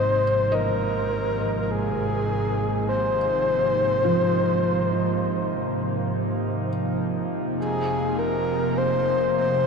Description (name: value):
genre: ambient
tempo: 51 BPM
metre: 4/4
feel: straight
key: Ab major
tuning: A4 = 441 Hz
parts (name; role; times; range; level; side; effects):
- breathy flute-like synth lead; melody; 0.0-9.7 s; Ab4 to C5; -24 LUFS; left 2 dB; chorus, tape echo
- warbly tape-like pad; sustained chords; 0.0-9.7 s; C3 to Eb4; -27 LUFS; right 1 dB; chorus, built-in reverb
- felt-muted upright piano; arpeggios; 0.0-7.6 s; F3 to F5; -31 LUFS; right 2 dB; tape echo
- dark symphonic double bass section; bass; 0.0-9.7 s; F1 to Ab1; -30 LUFS; right 1 dB; none
room: wet cathedral reverb, RT60 6.2 s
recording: dreamy mix soaked in reverb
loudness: -21 LUFS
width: side -5 dB against mid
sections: 0.0-9.7 A section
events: none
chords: 0.0 Ab; 7.6 F5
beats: 0.52 1.69 | 2.87 4.04 5.22 6.40 | 7.58 8.75